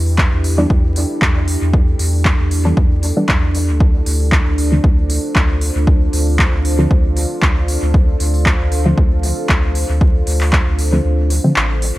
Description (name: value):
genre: dub techno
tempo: 116 BPM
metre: 4/4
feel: swing 53% on 16ths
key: unclear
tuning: A4 = 441 Hz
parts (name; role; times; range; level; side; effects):
- deep dark ambient pad; sustained chords; 0.0-12.0 s; D4 to C5; -23 LUFS; right 1 dB; chorus, built-in reverb, sidechain pumping
- soft dub sub bass; bass; 0.0-12.0 s; A1 to E2; -16 LUFS; equal; sidechain pumping
- deep house drum kit; drums; 0.1-11.9 s; handclaps, hi-hat; -21 LUFS; equal; dub echo
- electronic kick drum; drums; 0.2-10.6 s; none; -14 LUFS; equal; none
- filtered dub chord stab; stabs; 0.6-11.5 s; D3 to D4; -19 LUFS; equal; chorus, phaser, sidechain pumping, dub echo
room: digital ambience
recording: vinyl crackle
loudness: -12 LUFS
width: side -17 dB against mid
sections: 0.0-12.0 A section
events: filter sweep on synth stab 0.0-12.0; kick drops out 11.0-12.0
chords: 0.0 Em7; 3.8 Dm7